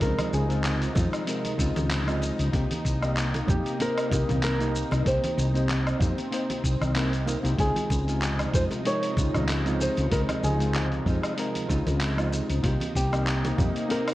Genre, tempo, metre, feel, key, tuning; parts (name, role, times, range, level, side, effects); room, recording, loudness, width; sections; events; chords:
sunset chillout; 95 BPM; 4/4; swing 55% on 16ths; Db lydian; A4 = 441 Hz
flamenco guitar; melody; 0.0-14.1 s; G4 to Db5; -31 LUFS; equal; digital delay, shimmer reverb
hollow-body jazz guitar; accompaniment; 0.0-14.1 s; C3 to C5; -32 LUFS; equal; auto-pan, digital delay, shimmer reverb
lush unison pad; sustained chords; 0.0-14.1 s; C3 to Eb4; -32 LUFS; equal; chorus, shimmer reverb
woody fretless electric bass; bass; 0.0-13.7 s; C2 to F2; -27 LUFS; equal; tube saturation
dusty soul sampler-style drum kit; drums; 0.0-14.1 s; handclaps, hi-hat, shaker, woodblock; -33 LUFS; equal
electronic kick drum; drums; 0.0-13.7 s; -28 LUFS; equal
congas; percussion; 0.2-14.0 s; -33 LUFS; right 1 dB
light reverb; worn, warbling old tape, cassette tape, warbly pitch drift; -23 LUFS; side -16 dB against mid
0.0-14.1 A section
0.0 Dbmaj9; 2.5 Cm7; 7.6 Dbmaj9; 12.6 Cm7